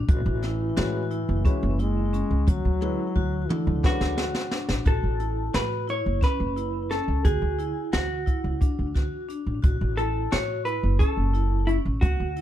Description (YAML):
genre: progressive instrumental, band music in an uneven meter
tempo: 176 BPM (eighths)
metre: 7/8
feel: straight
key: A major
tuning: A4 = 439 Hz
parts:
  - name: vibraphone with medium hard mallets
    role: arpeggios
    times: 0.0-12.4 s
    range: C#4 to F#4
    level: -32 LUFS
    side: right 1 dB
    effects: ping-pong delay
  - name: upright bass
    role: bass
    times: 0.0-12.4 s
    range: F#1 to A2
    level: -26 LUFS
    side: equal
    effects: none
  - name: breathy trombone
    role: second line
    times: 0.1-4.5 s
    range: D3 to G#3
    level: -31 LUFS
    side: left 4 dB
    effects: none
  - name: jazz brush drum kit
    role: drums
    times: 0.1-12.4 s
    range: hi-hat, kick drum, snare drum, toms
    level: -24 LUFS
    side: equal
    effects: none
  - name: warm baby grand piano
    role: accompaniment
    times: 0.8-4.8 s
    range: G#3 to B4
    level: -33 LUFS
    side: left 5 dB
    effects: none
  - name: vintage hollow-body jazz guitar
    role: melody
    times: 3.9-12.4 s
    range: E4 to C#5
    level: -29 LUFS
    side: left 1 dB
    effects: none
room: little or no reverb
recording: dark, warm production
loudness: -22 LUFS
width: side -11 dB against mid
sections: 0.0-4.9 A section; 4.9-12.4 B section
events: drum fill 2.8-4.9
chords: 0.1 A; 2.5 D; 4.9 A; 7.2 D; 9.6 A